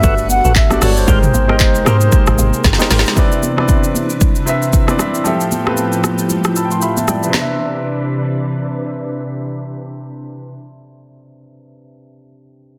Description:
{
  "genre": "amapiano",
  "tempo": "115 BPM",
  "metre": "4/4",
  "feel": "swing 58% on 16ths",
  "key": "C major",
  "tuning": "A4 = 441 Hz",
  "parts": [
    { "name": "wooden flute", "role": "melody", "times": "0.0-2.6 s", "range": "C5 to F#5", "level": "-21 LUFS", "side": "equal", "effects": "digital delay" },
    { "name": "clear baby grand piano", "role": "accompaniment", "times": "0.0-12.8 s", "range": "C3 to E6", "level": "-22 LUFS", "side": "equal", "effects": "low-pass filter" },
    { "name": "ensemble organ-string", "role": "sustained chords", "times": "0.0-10.6 s", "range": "A2 to G4", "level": "-24 LUFS", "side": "equal", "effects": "ensemble chorus, sidechain pumping, low-pass filter" },
    { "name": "percussive tonewheel organ", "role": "stabs", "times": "0.0-3.0 s", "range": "F#4 to C5", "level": "-28 LUFS", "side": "equal", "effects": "overdrive, slow rotary speaker, digital delay" },
    { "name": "woody log drum bass", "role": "bass", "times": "0.0-3.0 s", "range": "G1 to Ab2", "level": "-17 LUFS", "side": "equal", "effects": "none" },
    { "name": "deep house drum kit", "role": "drums", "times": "0.0-7.5 s", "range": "handclaps, hi-hat, kick drum, rim click, shaker, snare drum, toms", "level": "-17 LUFS", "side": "equal", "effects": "none" },
    { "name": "congas", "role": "percussion", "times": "0.3-7.6 s", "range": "none", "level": "-27 LUFS", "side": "equal", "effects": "none" }
  ],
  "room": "light reverb, digital ambience",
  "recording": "dense, heavily limited modern master",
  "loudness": "-15 LUFS",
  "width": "mono",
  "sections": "0.0-3.2 A section; 3.2-7.3 B section; 7.3-11.5 C section",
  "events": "drop 0.0-3.2; drum fill 2.6-3.2; grand piano fill 6.3-7.3",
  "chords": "0.0 Gmaj9; 1.1 Abmaj9; 3.2 Cmaj9; 5.3 Fmaj9; 7.3 Cmaj9"
}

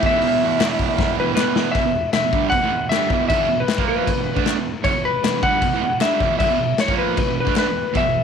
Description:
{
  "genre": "garage rock duo or trio",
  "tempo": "155 BPM",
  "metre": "4/4",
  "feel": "straight",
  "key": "unclear",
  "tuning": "A4 = 440 Hz",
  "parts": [
    { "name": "electric slide guitar", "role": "melody", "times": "0.0-8.2 s", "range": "B4 to F#5", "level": "-20 LUFS", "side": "left 3 dB", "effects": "none" },
    { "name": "fuzz guitar", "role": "riff", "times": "0.0-8.2 s", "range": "E2 to D4", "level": "-22 LUFS", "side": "right 12 dB", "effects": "distortion" },
    { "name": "raw garage drum kit", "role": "drums", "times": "0.0-8.0 s", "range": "crash cymbal, hi-hat, kick drum, snare drum", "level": "-23 LUFS", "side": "left 3 dB", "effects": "none" },
    { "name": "group handclap", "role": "percussion", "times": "0.6-7.7 s", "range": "none", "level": "-33 LUFS", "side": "left 15 dB", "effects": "none" }
  ],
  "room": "moderate spring reverb, RT60 2.3 s",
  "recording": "1960s-style stereo with parts hard left and right",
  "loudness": "-17 LUFS",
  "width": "side -7 dB against mid",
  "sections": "0.0-1.8 A section; 1.8-8.2 B section",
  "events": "drum fill 1.0-1.8",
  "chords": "0.0 E5"
}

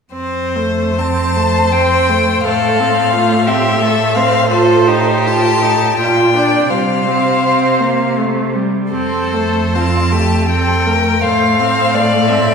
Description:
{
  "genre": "classical, slow romantic movement for string quartet",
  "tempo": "68-89 BPM",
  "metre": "3/4",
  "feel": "rubato",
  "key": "F major",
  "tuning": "A4 = 440 Hz",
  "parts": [
    { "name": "clear violin", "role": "melody", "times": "0.1-12.5 s", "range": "C5 to A5", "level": "-17 LUFS", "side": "left 6 dB", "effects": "none" },
    { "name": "rich viola", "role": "accompaniment", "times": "0.1-12.5 s", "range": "G3 to F4", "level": "-17 LUFS", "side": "right 2 dB", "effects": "none" },
    { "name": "rich cello", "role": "bass", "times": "0.1-12.5 s", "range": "F2 to C3", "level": "-18 LUFS", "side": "right 3 dB", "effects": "none" },
    { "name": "rich violin", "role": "second line", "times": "1.0-12.5 s", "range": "F4 to D5", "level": "-17 LUFS", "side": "left 1 dB", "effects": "none" }
  ],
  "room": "wet scoring stage reverb, RT60 1.9 s",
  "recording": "heard from further back in the room",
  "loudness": "-11 LUFS",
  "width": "side -6 dB against mid",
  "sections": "0.1-12.5 A section",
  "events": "none",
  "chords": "0.1 F; 2.5 F/A; 4.5 F7/A; 6.0 Bb; 6.7 Csus4; 8.2 C5; 8.9 F; 11.2 F/A"
}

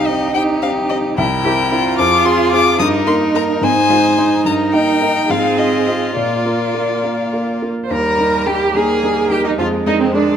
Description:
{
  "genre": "quick classical-period movement for piano quintet",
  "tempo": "72 BPM (dotted quarters)",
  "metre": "6/8",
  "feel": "rubato",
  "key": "Eb major",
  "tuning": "A4 = 440 Hz",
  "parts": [
    { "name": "warm violin", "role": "melody", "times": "0.0-10.4 s", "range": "C5 to Eb6", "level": "-19 LUFS", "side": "left 5 dB", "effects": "none" },
    { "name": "clear violin", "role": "second line", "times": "0.0-10.2 s", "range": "C4 to C5", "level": "-23 LUFS", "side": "left 2 dB", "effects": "none" },
    { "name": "warm cello", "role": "second line", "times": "0.0-10.4 s", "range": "C4 to C5", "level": "-20 LUFS", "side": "right 5 dB", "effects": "none" },
    { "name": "warm baby grand piano", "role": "accompaniment", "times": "0.0-10.4 s", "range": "C2 to Eb5", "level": "-19 LUFS", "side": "left 1 dB", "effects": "none" },
    { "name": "warm viola", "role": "accompaniment", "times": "0.0-10.4 s", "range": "G3 to F4", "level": "-21 LUFS", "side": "right 3 dB", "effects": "none" }
  ],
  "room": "moderate scoring stage reverb, RT60 1.9 s",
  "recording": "none",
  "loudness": "-13 LUFS",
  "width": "side -8 dB against mid",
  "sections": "0.0-7.9 A section; 7.9-10.4 A section",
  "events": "none",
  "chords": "0.0 Cm; 1.2 C7; 2.0 Fm; 2.8 Eb/G; 3.6 Ab; 4.5 Eb/G; 5.3 Ab6; 6.2 Bb; 7.9 Eb; 9.6 Bb7/F"
}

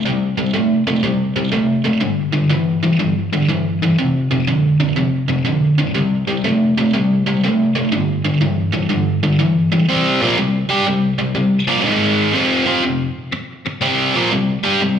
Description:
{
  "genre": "rock",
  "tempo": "122 BPM",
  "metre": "4/4",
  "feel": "swing 67% on 8ths",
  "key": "C mixolydian",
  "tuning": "A4 = 441 Hz",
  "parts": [
    { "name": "biting overdriven guitar", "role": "solo", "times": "0.0-15.0 s", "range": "F2 to G4", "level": "-14 LUFS", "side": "equal", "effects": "slapback echo" }
  ],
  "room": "moderate lush hall reverb, RT60 2.5 s",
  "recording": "live gig heard through the venue's PA, club reverb",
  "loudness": "-14 LUFS",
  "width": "side -8 dB against mid",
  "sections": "0.0-9.9 A section; 9.9-15.0 B section",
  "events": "none",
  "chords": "0.0 C5; 2.0 G5; 4.0 F5; 5.9 C5; 7.9 G5; 9.9 C5; 11.9 Ab5; 12.3 F5; 13.8 C5"
}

